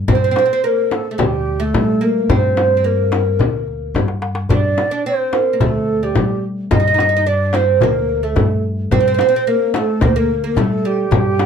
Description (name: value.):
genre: Arabic maqam ensemble.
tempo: 109 BPM.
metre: 4/4.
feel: straight.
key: G minor.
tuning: A4 = 437 Hz.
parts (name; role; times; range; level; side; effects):
upright bass; bass; 0.0-11.5 s; D2 to G3; -19 LUFS; left 1 dB; none.
mellow hollow ney; melody; 0.1-11.5 s; G4 to Eb5; -18 LUFS; right 1 dB; none.
oud; second line; 0.1-11.5 s; G3 to Eb4; -20 LUFS; right 3 dB; none.
darbuka; percussion; 0.1-11.5 s; none; -23 LUFS; left 1 dB; none.
frame drum; percussion; 0.1-11.5 s; none; -20 LUFS; left 5 dB; none.
room: light reverb.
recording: dark, warm production.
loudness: -14 LUFS.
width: side -7 dB against mid.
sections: 0.0-11.5 A section.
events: drum fill 4.0-4.5.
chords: none.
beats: | 0.08 0.63 1.19 1.74 | 2.29 2.85 3.40 3.95 | 4.50 5.05 5.61 6.16 | 6.71 7.26 7.81 8.36 | 8.91 9.46 10.01 10.56 | 11.11.